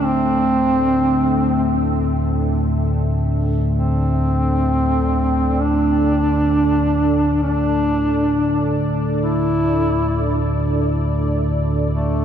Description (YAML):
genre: dark ambient drone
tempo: free time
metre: none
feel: none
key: unclear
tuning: A4 = 440 Hz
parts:
  - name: mellow duduk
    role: melody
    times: 0.0-12.2 s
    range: A3 to E4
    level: -19 LUFS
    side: equal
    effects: diffuse ambient delay
  - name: sweeping resonant pad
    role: sustained chords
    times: 0.0-12.2 s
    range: D4 to E5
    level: -25 LUFS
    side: right 1 dB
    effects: chorus
  - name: analog drone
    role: drone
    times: 0.0-12.2 s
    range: D2 to A2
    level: -19 LUFS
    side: equal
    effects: chorus
room: wet huge ambient reverb, RT60 8.1 s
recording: dark, warm production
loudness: -16 LUFS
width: side -8 dB against mid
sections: 0.0-12.2 A section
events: fade-in on analog synth pad 0.0-12.2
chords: 0.0 Dsus2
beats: free time